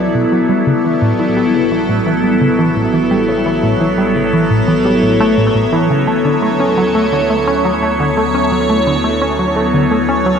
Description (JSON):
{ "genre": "ambient, sequencer-driven space music", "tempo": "86 BPM", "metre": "4/4", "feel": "straight", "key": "unclear", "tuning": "A4 = 441 Hz", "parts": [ { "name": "evolving wavetable pad", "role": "sustained chords", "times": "0.0-10.4 s", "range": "F#3 to D5", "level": "-13 LUFS", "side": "equal", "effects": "phaser, built-in reverb, shimmer reverb" }, { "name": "tight sequenced synth", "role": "riff", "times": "0.0-10.3 s", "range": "A2 to C#4", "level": "-16 LUFS", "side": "equal", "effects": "chorus, analog delay, shimmer reverb" }, { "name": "analog drone", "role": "bass", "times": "0.0-10.4 s", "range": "A1 to D2", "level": "-29 LUFS", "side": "equal", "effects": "chorus" } ], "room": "wet huge ambient reverb, RT60 8.2 s", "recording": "none", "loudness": "-11 LUFS", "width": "side -7 dB against mid", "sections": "0.0-10.4 A section", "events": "none", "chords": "0.5 A; 6.1 D" }